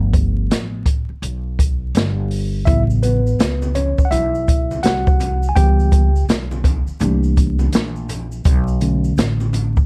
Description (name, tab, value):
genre	hip hop, jazz-hop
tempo	83 BPM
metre	4/4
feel	swing 64% on 16ths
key	unclear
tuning	A4 = 440 Hz
part	mellow tine electric piano	accompaniment	0.0-9.9 s	C#3 to G#5	-23 LUFS	equal	plate reverb
part	upright bass	bass	0.0-9.8 s	G1 to C#2	-21 LUFS	equal	none
part	open jazz drum kit	drums	0.1-9.9 s	hi-hat, kick drum, snare drum	-20 LUFS	equal	none
part	maracas and congas	percussion	2.7-9.9 s	none	-34 LUFS	equal	none
room	little or no reverb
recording	vinyl crackle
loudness	-18 LUFS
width	mono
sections	0.0-9.9 A section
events	tine electric piano solo 0.0-9.9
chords	0.0 G9; 2.7 A6; 5.6 C#m7b5; 7.0 C13; 8.5 Bm9